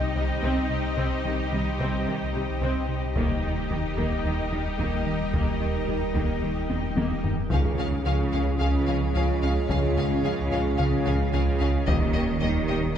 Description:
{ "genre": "cinematic, hybrid orchestral and electronic film score", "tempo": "110 BPM", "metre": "4/4", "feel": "straight", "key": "unclear", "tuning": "A4 = 442 Hz", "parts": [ { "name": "rich symphonic violin section", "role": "second line", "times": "0.0-12.8 s", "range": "G4 to Eb5", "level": "-35 LUFS", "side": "left 3 dB", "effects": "none" }, { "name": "rich symphonic viola section", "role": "accompaniment", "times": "0.0-12.8 s", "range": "Eb3 to Eb4", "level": "-33 LUFS", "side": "equal", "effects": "none" }, { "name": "evolving wavetable pad", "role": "sustained chords", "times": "0.0-13.0 s", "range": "G3 to Eb5", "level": "-33 LUFS", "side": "equal", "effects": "chorus, built-in reverb, phaser" }, { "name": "thumb-piano-like synth pluck", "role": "arpeggios", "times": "0.0-12.6 s", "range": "C3 to Eb4", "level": "-37 LUFS", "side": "left 1 dB", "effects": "none" }, { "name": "round analog bass", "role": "riff", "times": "0.0-12.9 s", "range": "C2 to Eb3", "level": "-31 LUFS", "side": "right 1 dB", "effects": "none" }, { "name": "punchy sub bass", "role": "bass", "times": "0.0-13.0 s", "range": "Eb1 to Db2", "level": "-31 LUFS", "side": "equal", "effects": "none" }, { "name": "rich symphonic cello section", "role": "bass", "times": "0.2-12.9 s", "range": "C3 to Eb3", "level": "-32 LUFS", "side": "right 1 dB", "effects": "none" }, { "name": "taiko ensemble", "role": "drums", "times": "3.2-13.0 s", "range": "none", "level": "-31 LUFS", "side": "left 1 dB", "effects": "none" }, { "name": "clear symphonic violin section", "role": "melody", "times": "7.5-13.0 s", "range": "Eb5 to F5", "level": "-33 LUFS", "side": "left 5 dB", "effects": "none" }, { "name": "mellow French horn section", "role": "sustained chords", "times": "7.5-13.0 s", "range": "Bb3 to F4", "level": "-35 LUFS", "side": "left 2 dB", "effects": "none" }, { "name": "warm trombone section", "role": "sustained chords", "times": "7.5-13.0 s", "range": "Db3 to Ab3", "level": "-36 LUFS", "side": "right 4 dB", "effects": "none" }, { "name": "mellow tuba", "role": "bass", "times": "7.5-12.9 s", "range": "Db2 to Eb2", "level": "-30 LUFS", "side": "right 1 dB", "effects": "none" }, { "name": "rich symphonic double bass section", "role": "bass", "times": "7.5-12.9 s", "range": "Db2 to Eb2", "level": "-32 LUFS", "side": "right 2 dB", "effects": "none" } ], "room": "wet concert hall reverb, RT60 2.5 s", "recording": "heard from further back in the room", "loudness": "-23 LUFS", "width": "side -9 dB against mid", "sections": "0.0-7.5 A section; 7.5-13.0 B section", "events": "drum fill 6.7-7.5", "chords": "0.0 Cm; 3.2 Eb; 7.5 Db; 11.9 Eb" }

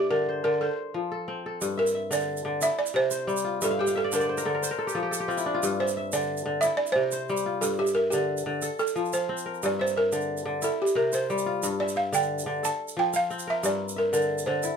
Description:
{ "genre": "west african traditional, West African string and xylophone music", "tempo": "120 BPM (dotted quarters)", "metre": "12/8", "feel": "straight", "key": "G dorian", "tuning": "A4 = 440 Hz", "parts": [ { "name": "balafon", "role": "melody", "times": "0.0-14.8 s", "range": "G4 to A5", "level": "-26 LUFS", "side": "right 2 dB", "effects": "none" }, { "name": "kora", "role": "arpeggios", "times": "0.0-14.8 s", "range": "G2 to G5", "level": "-28 LUFS", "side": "left 3 dB", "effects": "none" }, { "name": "egg shaker", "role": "percussion", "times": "1.6-14.7 s", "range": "none", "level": "-36 LUFS", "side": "right 5 dB", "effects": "none" } ], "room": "light reverb", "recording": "minimal, uncompressed stereo recording", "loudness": "-24 LUFS", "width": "side -6 dB against mid", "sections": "0.0-1.6 A section; 1.6-14.8 B section", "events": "balafon solo 1.6-14.8; kora fill 3.6-5.6", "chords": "0.0 Gm; 0.6 F; 1.6 Gm; 2.6 C; 3.6 Gm; 4.6 F5; 5.6 G5; 6.6 C; 7.6 G5; 8.6 F; 9.6 Gm; 10.6 C; 11.6 G5; 12.6 F; 13.6 Gm" }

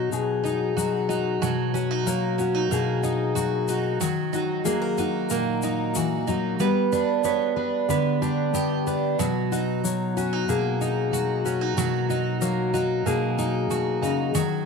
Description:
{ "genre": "acoustic folk duo or small band", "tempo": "93 BPM", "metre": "4/4", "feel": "straight", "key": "B major", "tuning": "A4 = 440 Hz", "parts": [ { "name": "fingerpicked steel-string acoustic guitar", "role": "accompaniment", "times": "0.0-14.7 s", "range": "A#2 to C#5", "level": "-24 LUFS", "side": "left 6 dB", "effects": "none" }, { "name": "picked twelve-string acoustic guitar", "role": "arpeggios", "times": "0.0-14.7 s", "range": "F#3 to G4", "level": "-26 LUFS", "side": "right 14 dB", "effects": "none" }, { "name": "egg shaker", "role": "percussion", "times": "0.1-14.5 s", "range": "none", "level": "-35 LUFS", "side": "left 9 dB", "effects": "none" } ], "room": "light reverb, small room ambience", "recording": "1960s-style stereo with parts hard left and right", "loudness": "-22 LUFS", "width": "side -5 dB against mid", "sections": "0.0-14.7 A section", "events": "none", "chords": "0.0 Bmaj7; 4.0 D#m; 6.6 G; 9.2 Bmaj7" }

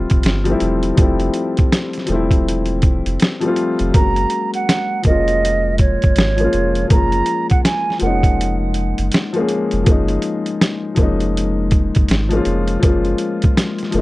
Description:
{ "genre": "lo-fi hip hop", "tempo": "81 BPM", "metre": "4/4", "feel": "swing 62% on 16ths", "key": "F# major", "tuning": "A4 = 440 Hz", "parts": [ { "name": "dark upright piano", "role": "accompaniment", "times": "0.0-14.0 s", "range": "F3 to G#4", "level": "-19 LUFS", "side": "left 3 dB", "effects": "cassette tape, low-pass filter" }, { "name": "soft dub sub bass", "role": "bass", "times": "0.0-14.0 s", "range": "E1 to G#1", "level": "-20 LUFS", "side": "equal", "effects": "none" }, { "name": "boom bap sampler-style drum kit", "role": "drums", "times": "0.1-14.0 s", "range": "hi-hat, kick drum, snare drum", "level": "-16 LUFS", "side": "equal", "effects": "none" }, { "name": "mellow hollow silver concert flute", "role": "melody", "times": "4.0-8.6 s", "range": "C#5 to A#5", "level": "-20 LUFS", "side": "right 4 dB", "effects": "low-pass filter, analog delay" } ], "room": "little or no reverb", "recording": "none", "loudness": "-14 LUFS", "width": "side -19 dB against mid", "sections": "0.0-14.0 A section", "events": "none", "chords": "0.0 Fmaj9; 3.9 F#maj9" }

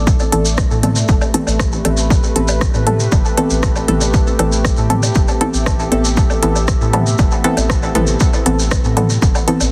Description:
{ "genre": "dub techno", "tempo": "118 BPM", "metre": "4/4", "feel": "straight", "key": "A minor", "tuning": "A4 = 440 Hz", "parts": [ { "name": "deep dark ambient pad", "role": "sustained chords", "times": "0.0-9.7 s", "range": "A3 to E5", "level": "-26 LUFS", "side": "equal", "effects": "chorus, built-in reverb, sidechain pumping" }, { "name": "soft dub sub bass", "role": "bass", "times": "0.0-9.7 s", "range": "G1 to A2", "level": "-21 LUFS", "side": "equal", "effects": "sidechain pumping" }, { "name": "electronic kick drum", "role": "drums", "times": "0.1-9.3 s", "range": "none", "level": "-18 LUFS", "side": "equal", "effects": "studio reverb" }, { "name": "maracas", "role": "percussion", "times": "0.1-9.7 s", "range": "none", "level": "-26 LUFS", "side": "equal", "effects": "none" }, { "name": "electronic woodblock and toms", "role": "percussion", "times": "0.2-9.7 s", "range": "none", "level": "-28 LUFS", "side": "equal", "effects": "overdrive, sidechain pumping on perc, studio reverb, sidechain pumping on toms, dub echo" }, { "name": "filtered dub chord stab", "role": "stabs", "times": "0.3-9.7 s", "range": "E3 to A4", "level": "-21 LUFS", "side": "equal", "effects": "chorus, phaser, sidechain pumping, dub echo" }, { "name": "deep house drum kit", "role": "drums", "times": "0.3-9.6 s", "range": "hi-hat, rim click", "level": "-27 LUFS", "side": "equal", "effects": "studio reverb, dub echo" } ], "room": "light reverb", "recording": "heavily compressed radio sound, multiband compression", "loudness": "-15 LUFS", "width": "mono", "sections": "0.0-8.2 A section; 8.2-9.7 A section", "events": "filter sweep on synth stab 0.0-8.2", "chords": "0.0 Amadd9" }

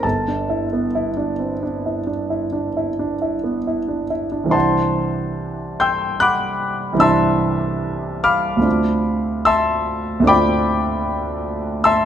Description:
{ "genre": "classical, impressionist solo piano", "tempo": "64-79 BPM", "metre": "5/4", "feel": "rubato", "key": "C major", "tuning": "A4 = 438 Hz", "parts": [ { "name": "warm concert grand piano", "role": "solo", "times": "0.0-12.1 s", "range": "G1 to G6", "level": "-17 LUFS", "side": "equal", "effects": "none" } ], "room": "moderate recital hall reverb, RT60 1.4 s", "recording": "close, detailed microphones", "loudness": "-17 LUFS", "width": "side -9 dB against mid", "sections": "0.0-4.5 A section; 4.5-12.1 B section", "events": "none", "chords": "0.0 G69; 4.5 Cadd9; 8.7 Dm7" }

